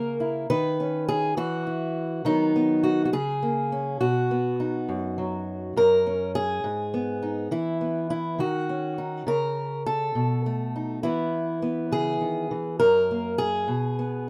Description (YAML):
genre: folk, solo fingerstyle acoustic guitar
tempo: 68 BPM (dotted quarters)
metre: 6/8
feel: straight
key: unclear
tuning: A4 = 440 Hz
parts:
  - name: fingerpicked acoustic archtop guitar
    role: solo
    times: 0.0-14.3 s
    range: F#2 to B4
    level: -26 LUFS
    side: equal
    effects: none
room: light reverb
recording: none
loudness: -26 LUFS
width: mono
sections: 0.0-5.8 A section; 5.8-14.3 B section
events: none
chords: 0.5 Badd9/D#; 1.4 N.C.; 2.2 B/D#; 3.1 A#m7/C#; 4.0 B; 5.8 F#5; 6.6 G#m; 7.5 E5; 8.4 D#m7; 9.3 N.C.; 10.2 B7; 11.0 E; 12.8 F#; 13.7 N.C.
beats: | 0.49 1.37 | 2.24 3.12 | 4.00 4.88 | 5.75 6.63 | 7.51 8.39 | 9.27 10.15 | 11.03 11.91 | 12.79 13.68